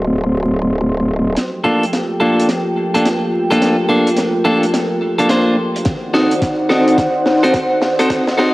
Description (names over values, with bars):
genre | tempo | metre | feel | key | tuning
glitch hop | 107 BPM | 4/4 | swing 63% on 16ths | G minor | A4 = 440 Hz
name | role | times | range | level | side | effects
dark analog pad | sustained chords | 0.0-8.5 s | Eb4 to C6 | -17 LUFS | equal | chorus, sidechain pumping, cassette tape
clean electric guitar | stabs | 0.0-8.5 s | Bb3 to C5 | -16 LUFS | equal | vintage 12-bit sampler grit, sidechain pumping, low-pass filter, cassette tape, tape echo
growl bass | bass | 0.0-1.4 s | D1 | -15 LUFS | equal | chorus, overdrive
deep reggae drum kit | drums | 1.4-8.5 s | hi-hat, snare drum | -21 LUFS | equal | high-pass filter on hats, low-pass filter on hats, cassette tape, high-pass filter on snare, low-pass filter on snare, high-pass filter on room, low-pass filter on room
electronic kick drum | drums | 5.9-8.2 s | none | -20 LUFS | equal | overdrive, cassette tape
room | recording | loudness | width
moderate lush hall reverb, RT60 1.9 s, small room ambience | home recording on cassette, vinyl crackle, high-pass filter | -13 LUFS | side -19 dB against mid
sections
0.0-1.4 A section; 1.4-8.5 B section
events
build-up 1.4-8.5; drum fill 1.4-8.5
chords
0.0 D7b9; 1.4 Gm9; 5.9 D7b9